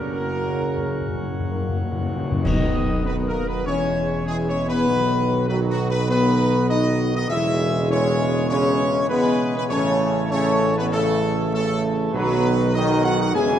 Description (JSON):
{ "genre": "classical, ceremonial fanfare", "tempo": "99 BPM", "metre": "4/4", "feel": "straight", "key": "B major", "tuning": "A4 = 440 Hz", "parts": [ { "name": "clear trumpet section", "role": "melody", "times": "0.0-13.6 s", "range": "F#4 to G#5", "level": "-25 LUFS", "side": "equal", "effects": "none" }, { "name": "dark French horn section", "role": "sustained chords", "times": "0.0-13.6 s", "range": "F#3 to G#4", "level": "-25 LUFS", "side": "left 4 dB", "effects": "none" }, { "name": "pipe organ, principal chorus", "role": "sustained chords", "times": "0.0-13.6 s", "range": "A2 to A4", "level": "-28 LUFS", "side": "right 1 dB", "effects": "none" }, { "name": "warm trombone section", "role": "sustained chords", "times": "0.0-13.6 s", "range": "C#3 to B3", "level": "-26 LUFS", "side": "right 2 dB", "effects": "none" }, { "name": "mellow tuba", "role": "bass", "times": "0.0-13.6 s", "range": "E1 to E2", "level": "-25 LUFS", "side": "right 3 dB", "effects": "none" }, { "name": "timpani", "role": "percussion", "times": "0.0-3.3 s", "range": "F#2 to B2", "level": "-27 LUFS", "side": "left 2 dB", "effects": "none" }, { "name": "clash cymbals and concert bass drum", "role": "percussion", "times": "2.5-3.6 s", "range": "none", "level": "-30 LUFS", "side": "equal", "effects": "none" } ], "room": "wet concert hall reverb, RT60 2.4 s", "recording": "dark, warm production", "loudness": "-19 LUFS", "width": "side -10 dB against mid", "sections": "0.0-2.4 A section; 2.4-13.6 B section", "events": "timpani fill 0.0-2.4; band accent 2.4-3.1", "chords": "0.0 F#; 2.4 B; 3.7 E6; 4.9 B; 7.3 E6; 9.7 A; 12.1 B" }